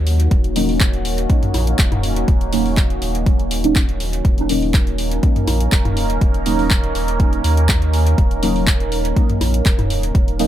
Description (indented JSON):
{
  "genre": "dub techno",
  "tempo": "122 BPM",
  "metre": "4/4",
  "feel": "straight",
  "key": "unclear",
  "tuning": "A4 = 440 Hz",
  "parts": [
    { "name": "deep dark ambient pad", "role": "sustained chords", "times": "0.0-10.5 s", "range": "A#3 to A#4", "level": "-23 LUFS", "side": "right 2 dB", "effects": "chorus, built-in reverb, sidechain pumping" },
    { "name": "round analog bass", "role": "bass", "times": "0.0-10.5 s", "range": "D#1 to D#2", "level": "-20 LUFS", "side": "equal", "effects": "sidechain pumping" },
    { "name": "deep house drum kit", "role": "drums", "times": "0.1-10.5 s", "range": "handclaps, hi-hat", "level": "-24 LUFS", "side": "equal", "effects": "none" },
    { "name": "electronic kick drum", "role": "drums", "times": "0.3-10.3 s", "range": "none", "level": "-16 LUFS", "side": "equal", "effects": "none" },
    { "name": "deep mellow chord stab", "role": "stabs", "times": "0.6-10.5 s", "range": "F#3 to D#4", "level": "-22 LUFS", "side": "right 1 dB", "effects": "chorus, phaser, dub echo" },
    { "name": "electronic toms and bongos", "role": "percussion", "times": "1.4-2.0, 5.4-5.9, 9.3-9.9 s", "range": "none", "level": "-23 LUFS", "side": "left 1 dB", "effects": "overdrive, sidechain pumping on toms, sidechain pumping on perc" }
  ],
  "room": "little or no reverb",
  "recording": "none",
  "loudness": "-14 LUFS",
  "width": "side -12 dB against mid",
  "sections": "0.0-10.5 A section",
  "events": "none",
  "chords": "0.0 D#m7"
}